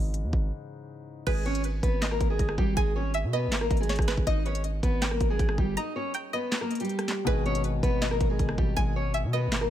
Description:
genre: hip hop, trap.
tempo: 160 BPM.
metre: 4/4.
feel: half-time.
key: G# harmonic minor.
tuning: A4 = 439 Hz.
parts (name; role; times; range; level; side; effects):
dark baby grand piano; accompaniment; 0.0-1.3, 7.2-9.7 s; G#2 to D#4; -35 LUFS; left 5 dB; low-pass filter.
hard-hitting 808-style bass; bass; 0.0-9.7 s; G1 to B2; -29 LUFS; equal; none.
trap drum kit; drums; 0.1-9.7 s; crash cymbal, handclaps, hi-hat, kick drum, rim click, snare drum; -28 LUFS; equal; overdrive, vintage 12-bit sampler grit.
fingerpicked steel-string acoustic guitar; melody; 1.3-9.7 s; G3 to D#5; -30 LUFS; equal; low-pass filter, digital delay.
string-like resonator pluck; second line; 1.3-9.7 s; B4 to A#5; -35 LUFS; right 1 dB; chorus, phaser, digital delay.
room: little or no reverb.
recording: none.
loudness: -25 LUFS.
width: side -11 dB against mid.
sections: 0.0-1.3 A section; 1.3-9.7 B section.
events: break 0.5-1.3, 5.8-7.3.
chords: 0.0 C#madd9/G#; 1.3 G#m; 4.3 D#.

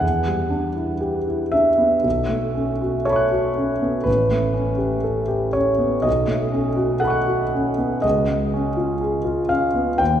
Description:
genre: classical, impressionist solo piano.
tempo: 60 BPM.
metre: 4/4.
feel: rubato.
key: unclear.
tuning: A4 = 441 Hz.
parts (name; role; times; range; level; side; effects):
clear concert grand piano; solo; 0.0-10.2 s; A1 to F#6; -18 LUFS; equal; none.
room: wet church reverb, RT60 3.4 s.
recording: recorded in a church or concert hall.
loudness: -18 LUFS.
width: side -10 dB against mid.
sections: 0.0-10.2 A section.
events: none.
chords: 0.0 Em7; 2.0 B9sus4; 4.1 A9; 6.1 B9; 8.0 C#9.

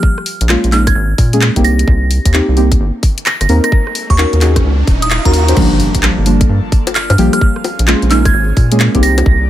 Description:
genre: UK garage, two-step garage.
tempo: 130 BPM.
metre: 4/4.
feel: swing 64% on 16ths.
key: unclear.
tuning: A4 = 440 Hz.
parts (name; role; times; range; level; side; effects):
glassy synth bell; melody; 0.0-9.5 s; Bb5 to Bb6; -19 LUFS; right 3 dB; chorus.
electronic kick drum; drums; 0.0-9.4 s; none; -12 LUFS; equal; none.
garage drum kit; drums; 0.2-9.2 s; bongos, crash cymbal, handclaps, hi-hat, rim click; -18 LUFS; left 2 dB; none.
rubbery square bass; bass; 0.4-9.5 s; Eb1 to Bb2; -13 LUFS; equal; none.
deep mellow chord stab; stabs; 0.5-9.5 s; F3 to C5; -15 LUFS; equal; chorus, vintage 12-bit sampler grit, ping-pong delay.
riser and impact; sound effects; 3.7-7.4 s; none; -23 LUFS; right 1 dB; none.
airy breathy pad; sustained chords; 6.0-9.5 s; Bb3 to D5; -26 LUFS; right 2 dB; chorus, phaser, sidechain pumping.
room: little or no reverb.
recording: none.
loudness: -9 LUFS.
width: side -13 dB against mid.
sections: 0.0-5.6 A section; 5.6-9.5 B section.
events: riser 3.7-5.6; band accent 5.1; drop 5.6-9.5; impact 5.6-7.4.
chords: 0.0 Bbm7; 1.6 Cm7; 3.7 Ebm7; 5.6 Gm7; 7.4 Bbm7.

